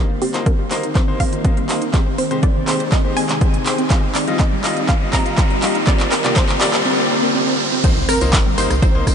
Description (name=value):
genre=progressive house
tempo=122 BPM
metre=4/4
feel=straight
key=C minor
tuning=A4 = 440 Hz
part: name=wide unison pluck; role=melody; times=0.0-9.1 s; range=G4 to Bb5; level=-25 LUFS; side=right 1 dB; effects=sidechain pumping, ping-pong delay
part: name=evolving wavetable pad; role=sustained chords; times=0.0-9.1 s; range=Eb3 to Bb4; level=-25 LUFS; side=right 1 dB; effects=chorus, built-in reverb, sidechain pumping
part: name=wide unison pluck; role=arpeggios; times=0.0-9.1 s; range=C3 to C5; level=-24 LUFS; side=equal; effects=sidechain pumping, ping-pong delay
part: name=bright concert grand piano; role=stabs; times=0.0-9.1 s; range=G3 to Eb5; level=-25 LUFS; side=left 3 dB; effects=sidechain pumping, low-pass filter, ping-pong delay
part: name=riser and impact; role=sound effects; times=1.8-9.1 s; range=none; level=-26 LUFS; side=right 1 dB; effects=none
part: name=big-room dance drum kit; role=drums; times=0.2-9.1 s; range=crash cymbal, handclaps, hi-hat, rim click, tambourine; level=-22 LUFS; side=right 1 dB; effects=none
part: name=electronic kick drum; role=drums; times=0.5-9.1 s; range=none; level=-16 LUFS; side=equal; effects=none
part: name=rich chamber violin section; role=second line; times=7.8-9.1 s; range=Bb4 to C5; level=-34 LUFS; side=right 1 dB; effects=none
part: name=round analog bass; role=bass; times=8.0-9.0 s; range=G1 to C2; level=-21 LUFS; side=equal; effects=tube saturation, sidechain pumping
room=moderate huge ambient reverb, RT60 6.1 s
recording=dreamy mix soaked in reverb, nothing above 10.3 kHz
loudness=-14 LUFS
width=side -7 dB against mid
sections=0.0-7.8 A section; 7.8-9.1 B section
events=build-up 0.0-7.8; drum fill 0.0-6.9; filter sweep on ambient pad 0.0-7.8; riser 1.8-7.8; drop 7.8-9.1; impact 7.8-9.1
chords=0.0 Cm7; 1.9 Abmaj7; 3.9 Ebadd9; 5.9 Gm; 7.8 Cm7